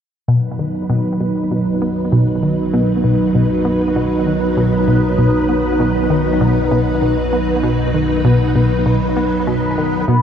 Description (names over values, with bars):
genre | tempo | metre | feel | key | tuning
ambient, sequencer-driven space music | 98 BPM | 4/4 | straight | B major | A4 = 438 Hz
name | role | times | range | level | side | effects
string machine, full ensemble | sustained chords | 0.3-10.2 s | F#3 to B4 | -16 LUFS | right 1 dB | ensemble chorus
analog pluck | riff | 0.3-10.2 s | B2 to B3 | -17 LUFS | left 1 dB | chorus, phaser, cassette tape, tape echo
warm sub bass | bass | 0.3-10.2 s | B1 | -27 LUFS | equal | none
concert harp | arpeggios | 10.1-10.2 s | B3 | -16 LUFS | left 4 dB | auto-pan
room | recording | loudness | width
wet plate reverb, RT60 3.6 s | dreamy mix soaked in reverb | -14 LUFS | side -8 dB against mid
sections
0.3-10.1 A section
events
fade-in on sub bass 0.3-10.1; filter sweep on synth arpeggio sound 0.3-10.1; filter sweep on string machine 0.3-10.1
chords
0.3 B